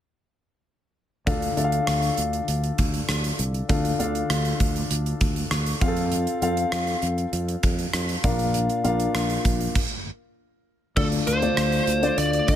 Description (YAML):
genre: 1980s-style pop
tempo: 99 BPM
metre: 4/4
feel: straight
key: D minor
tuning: A4 = 441 Hz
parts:
  - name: dark grand piano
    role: accompaniment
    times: 1.3-12.6 s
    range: Bb2 to F5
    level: -25 LUFS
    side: left 3 dB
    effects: none
  - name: sustaining fretless electric bass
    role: bass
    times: 1.3-12.6 s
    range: Bb1 to D3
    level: -26 LUFS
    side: equal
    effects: none
  - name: gated 80s drum kit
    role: drums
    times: 1.3-12.6 s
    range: crash cymbal, hi-hat, kick drum, rim click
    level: -26 LUFS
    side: right 1 dB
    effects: none
  - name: biting lead guitar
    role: melody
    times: 11.0-12.6 s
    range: A4 to E5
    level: -24 LUFS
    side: right 2 dB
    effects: overdrive
room: light reverb, small room ambience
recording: none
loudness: -21 LUFS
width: side -10 dB against mid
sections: 1.3-11.0 A section; 11.0-12.6 B section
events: stop 9.8-11.0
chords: 1.3 Dm; 5.8 F; 8.2 Bb; 11.0 Dm